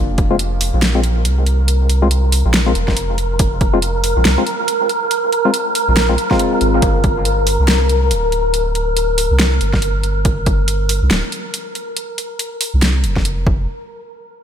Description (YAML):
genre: deep dubstep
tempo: 140 BPM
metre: 4/4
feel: swing 59% on 16ths, half-time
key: F dorian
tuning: A4 = 440 Hz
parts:
  - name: soft dub sub bass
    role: bass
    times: 0.0-13.7 s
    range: D1 to C2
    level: -16 LUFS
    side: equal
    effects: none
  - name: wind-like tuned noise texture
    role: texture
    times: 0.7-13.7 s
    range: Bb4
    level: -20 LUFS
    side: equal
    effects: built-in reverb
  - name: deep house drum kit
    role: drums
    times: 0.2-13.4 s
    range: hi-hat, snare drum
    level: -19 LUFS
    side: equal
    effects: overdrive, studio reverb
  - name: electronic kick drum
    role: drums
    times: 0.2-0.3, 2.9-3.7, 6.3-7.1, 9.7-10.6, 13.2-13.6 s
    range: none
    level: -17 LUFS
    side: equal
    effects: overdrive, studio reverb
  - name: percussive organ stab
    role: stabs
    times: 0.3-6.8 s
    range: Ab3 to F4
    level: -21 LUFS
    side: left 3 dB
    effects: chorus, dub echo
room: light reverb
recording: none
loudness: -14 LUFS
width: side -9 dB against mid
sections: 0.0-13.7 A section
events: filter sweep on sub bass 0.0-13.7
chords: 0.0 Fm; 6.8 Gm; 13.5 Fsus4; 13.7 N.C.